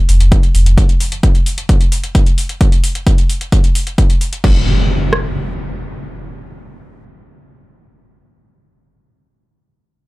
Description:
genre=driving peak-time techno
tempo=131 BPM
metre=4/4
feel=straight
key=unclear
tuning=A4 = 440 Hz
part: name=saturated sub bass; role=bass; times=0.1-0.8 s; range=F1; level=-12 LUFS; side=equal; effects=tube saturation, sidechain pumping, low-pass filter
part: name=techno drum kit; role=drums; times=0.1-4.5 s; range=crash cymbal, hi-hat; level=-24 LUFS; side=left 1 dB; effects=none
part: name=techno drum kit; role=drums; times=0.3-5.2 s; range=kick drum, rim click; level=-12 LUFS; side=equal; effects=none
part: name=impact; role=sound effects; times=4.4-8.9 s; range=none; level=-18 LUFS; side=equal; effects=none
room=little or no reverb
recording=none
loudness=-11 LUFS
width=side -21 dB against mid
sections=0.0-4.4 A section; 4.4-8.1 B section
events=none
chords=none

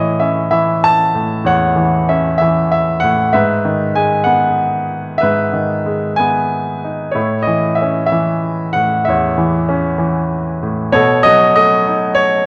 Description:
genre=classical, lyrical solo piano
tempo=64 BPM (dotted quarters)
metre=6/8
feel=rubato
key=unclear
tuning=A4 = 440 Hz
part: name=clear baby grand piano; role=solo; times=0.0-12.5 s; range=E2 to A5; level=-15 LUFS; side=equal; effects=none
room=moderate recital hall reverb, RT60 1.5 s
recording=worn, warbling old tape, cassette tape, warbly pitch drift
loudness=-15 LUFS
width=mono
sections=0.0-12.5 A section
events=none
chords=0.0 A; 3.3 Emaj7/G#; 7.2 A; 10.9 B7

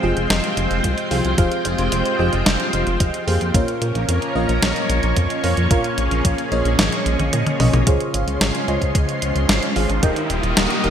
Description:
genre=synthwave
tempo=111 BPM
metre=4/4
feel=straight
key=unclear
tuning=A4 = 440 Hz
part: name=string machine, full ensemble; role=sustained chords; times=0.0-10.9 s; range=F3 to C6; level=-23 LUFS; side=equal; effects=ensemble chorus, sidechain pumping, shimmer reverb
part: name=FM electric piano with soft pad layer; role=stabs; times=0.0-10.9 s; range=Bb2 to G5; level=-24 LUFS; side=equal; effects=chorus, phaser, low-pass filter, ping-pong delay, shimmer reverb
part: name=chorused synth bass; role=bass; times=0.0-10.9 s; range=Eb1 to Bb2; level=-21 LUFS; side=equal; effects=sidechain pumping
part: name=clean 12-bit digital drum machine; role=drums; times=0.2-10.9 s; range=hi-hat, snare drum, toms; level=-21 LUFS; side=equal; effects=small room ambience, gated reverb
part: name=electronic kick drum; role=drums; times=0.8-10.1 s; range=none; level=-19 LUFS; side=equal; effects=small room ambience
part: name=riser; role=sound effects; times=9.1-10.9 s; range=none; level=-28 LUFS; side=left 1 dB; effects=none
room=moderate lush hall reverb, RT60 1.7 s, digital ambience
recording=bright 1980s-style digital production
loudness=-16 LUFS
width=side -8 dB against mid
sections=0.0-7.9 A section; 7.9-10.9 B section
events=drum fill 6.8-7.9; filter sweep on FM electric piano 7.9-10.9; riser 9.1-10.9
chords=0.0 Fmadd9; 3.5 Bbm; 7.9 Dbmaj7; 10.0 Eb

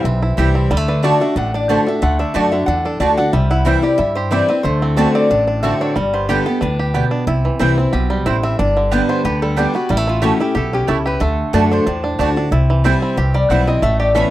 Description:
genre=bluegrass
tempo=183 BPM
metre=4/4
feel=swing 54% on 8ths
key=unclear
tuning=A4 = 440 Hz
part: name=lap resonator guitar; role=melody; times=0.0-14.3 s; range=E4 to F#5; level=-20 LUFS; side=left 1 dB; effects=none
part: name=picked steel-string acoustic guitar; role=accompaniment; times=0.0-14.3 s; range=G2 to G4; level=-20 LUFS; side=left 1 dB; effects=none
part: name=bluegrass banjo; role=arpeggios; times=0.0-14.3 s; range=D3 to G4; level=-22 LUFS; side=right 3 dB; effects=none
part: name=upright bass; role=bass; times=0.0-14.2 s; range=G1 to G2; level=-18 LUFS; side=equal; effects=none
part: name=mandolin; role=stabs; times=0.4-14.3 s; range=A3 to B5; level=-20 LUFS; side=right 7 dB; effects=none
room=little or no reverb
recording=dry, close 1970s-style studio recording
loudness=-14 LUFS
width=side -14 dB against mid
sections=0.0-7.3 A section; 7.3-14.3 B section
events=none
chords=0.0 C; 0.7 D; 3.3 C; 4.6 D7; 6.0 G; 7.3 C; 8.6 G; 9.9 A; 11.2 D; 12.5 C

